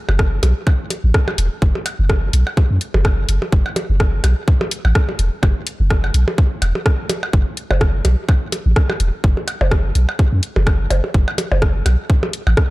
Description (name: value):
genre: minimal techno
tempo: 126 BPM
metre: 4/4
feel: swing 56% on 16ths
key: F# minor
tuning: A4 = 440 Hz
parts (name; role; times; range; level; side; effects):
- punchy sub bass; bass; 0.1-12.6 s; E1 to F#2; -16 LUFS; equal; sidechain pumping
- percussion blips; percussion; 0.1-12.6 s; none; -24 LUFS; right 1 dB; tape echo
- electronic kick drum; drums; 0.2-12.7 s; none; -17 LUFS; equal; none
- garage drum kit; drums; 0.2-12.7 s; hi-hat, rim click; -23 LUFS; equal; none
room: little or no reverb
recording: dark, warm production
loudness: -15 LUFS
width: side -19 dB against mid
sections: 0.0-12.7 A section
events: none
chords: none